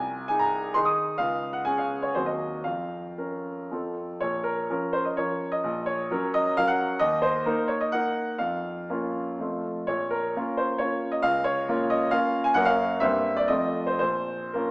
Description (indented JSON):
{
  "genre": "classical, romantic triple-time dance for piano with dotted rhythms",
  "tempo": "107-142 BPM",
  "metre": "3/4",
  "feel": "rubato",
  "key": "Bb minor",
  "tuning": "A4 = 440 Hz",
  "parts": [
    { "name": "clear concert grand piano", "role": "solo", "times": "0.0-14.7 s", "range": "Bb1 to Eb6", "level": "-24 LUFS", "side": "equal", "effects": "none" }
  ],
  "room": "moderate concert hall reverb, RT60 1.7 s",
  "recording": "small speaker sound",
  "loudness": "-24 LUFS",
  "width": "side -29 dB against mid",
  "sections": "0.0-4.2 A section; 4.2-14.7 B section",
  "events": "none",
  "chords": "0.0 Ab/C; 1.2 Db5; 2.2 Cdim/Eb; 2.7 Bbm/F; 3.7 F; 4.2 Bbm; 5.6 Gb/Bb; 7.0 Ebm; 8.4 Bbm/F; 9.4 F; 9.9 Bbm; 11.2 Bbm/Db; 12.6 Gb; 13.0 C7/G; 13.5 F7; 14.0 Bbm"
}